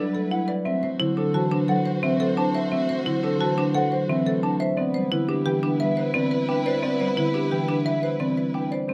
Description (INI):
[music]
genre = classical, minimalist pattern music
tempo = 175 BPM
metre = 6/4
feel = straight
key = unclear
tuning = A4 = 440 Hz
[part]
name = mellow electric guitar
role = melody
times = 0.0-8.9 s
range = G4 to A5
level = -31 LUFS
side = equal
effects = none
[part]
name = clear French horn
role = second line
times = 0.0-8.9 s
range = B4 to C5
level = -35 LUFS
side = equal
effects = none
[part]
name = concert harp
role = accompaniment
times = 0.0-8.9 s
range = D3 to B3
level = -29 LUFS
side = equal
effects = none
[part]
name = warm chamber violin section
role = sustained chords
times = 0.0-8.9 s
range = E4 to C5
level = -36 LUFS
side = equal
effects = none
[part]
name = marimba with hard mallets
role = arpeggios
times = 0.0-8.9 s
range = C4 to C5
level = -28 LUFS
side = equal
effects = none
[sound]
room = light reverb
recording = none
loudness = -24 LUFS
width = mono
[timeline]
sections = 0.0-8.9 A section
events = none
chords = 0.0 G69; 0.7 D7; 4.8 Cmaj7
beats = 0.32 | 0.66 1.00 1.35 1.69 2.03 2.38 | 2.72 3.06 3.40 3.75 4.09 4.43 | 4.78 5.12 5.46 5.80 6.15 6.49 | 6.83 7.17 7.52 7.86 8.20 8.55 | 8.89